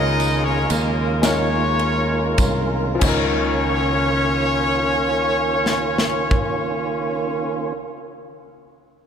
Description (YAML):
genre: slow gospel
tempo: 30-41 BPM (dotted quarters)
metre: 6/8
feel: straight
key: Db major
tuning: A4 = 438 Hz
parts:
  - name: clear horn section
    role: melody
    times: 0.0-7.7 s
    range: Bb3 to Eb5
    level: -22 LUFS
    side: left 1 dB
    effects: none
  - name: clear upright piano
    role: accompaniment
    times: 0.0-9.1 s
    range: Db2 to Bb4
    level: -27 LUFS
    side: left 4 dB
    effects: none
  - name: tonewheel organ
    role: sustained chords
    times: 0.0-7.7 s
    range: Eb3 to F4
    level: -24 LUFS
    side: right 3 dB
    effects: slow rotary speaker
  - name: fingered electric bass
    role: bass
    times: 0.0-7.9 s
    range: C2 to Eb2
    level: -24 LUFS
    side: right 1 dB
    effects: none
  - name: modern studio drum kit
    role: drums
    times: 0.2-6.6 s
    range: crash cymbal, kick drum, ride cymbal, snare drum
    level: -24 LUFS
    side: equal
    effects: none
  - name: tambourine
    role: percussion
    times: 0.2-3.6 s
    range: none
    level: -35 LUFS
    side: right 4 dB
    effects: none
room: wet lush hall reverb, RT60 2.8 s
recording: dreamy mix soaked in reverb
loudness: -17 LUFS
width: side -7 dB against mid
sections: 0.0-3.0 A section; 3.0-7.0 B section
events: slowing down 0.0-3.0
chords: 0.0 Db69